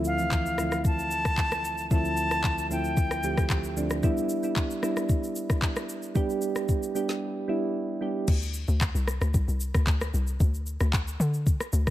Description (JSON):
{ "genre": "amapiano", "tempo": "113 BPM", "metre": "4/4", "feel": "straight", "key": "unclear", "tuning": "A4 = 441 Hz", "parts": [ { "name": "soft electric-piano-like synth keys", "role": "accompaniment", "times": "0.0-8.3 s", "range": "D2 to G4", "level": "-28 LUFS", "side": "right 2 dB", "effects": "chorus" }, { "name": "smooth R&B drum kit", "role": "drums", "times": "0.0-11.9 s", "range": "crash cymbal, handclaps, kick drum, rim click, shaker, snare drum", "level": "-27 LUFS", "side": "left 1 dB", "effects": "none" }, { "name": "bright concert flute", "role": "melody", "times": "0.1-3.7 s", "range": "F5 to A5", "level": "-29 LUFS", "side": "left 1 dB", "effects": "digital delay" }, { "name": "hollow log drum bass", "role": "bass", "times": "8.3-11.9 s", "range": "C2 to D3", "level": "-26 LUFS", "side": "left 1 dB", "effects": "none" } ], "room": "little or no reverb", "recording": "none", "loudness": "-24 LUFS", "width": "side -14 dB against mid", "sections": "0.0-8.3 A section; 8.3-11.9 B section", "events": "break 7.2-8.3; drop 8.3-11.9", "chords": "0.0 Dm9; 4.0 Em7; 8.3 Csus2" }